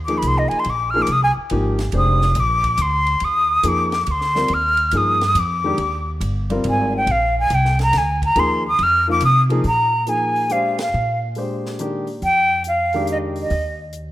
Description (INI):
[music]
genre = modal jazz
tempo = 140 BPM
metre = 3/4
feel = swing 67% on 8ths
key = Bb mixolydian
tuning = A4 = 436 Hz
[part]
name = upright bass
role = bass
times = 0.0-14.1 s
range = F1 to C3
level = -22 LUFS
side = equal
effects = none
[part]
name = breathy mellow jazz flute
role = melody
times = 0.1-13.8 s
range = Eb5 to F6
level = -18 LUFS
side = equal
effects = none
[part]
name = warm baby grand piano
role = accompaniment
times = 0.1-13.5 s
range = Eb3 to C5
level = -24 LUFS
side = left 1 dB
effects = none
[part]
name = compact cocktail drum kit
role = drums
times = 0.1-14.1 s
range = hi-hat, kick drum, ride cymbal, snare drum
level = -34 LUFS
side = right 1 dB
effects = none
[sound]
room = moderate plate reverb, RT60 1.7 s, small room ambience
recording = rough home demo mix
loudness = -16 LUFS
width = side -15 dB against mid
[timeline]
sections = 0.0-9.6 A section; 9.6-14.1 B section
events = flute solo 0.0-9.6; band accent 10.7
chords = 0.0 Bb9sus4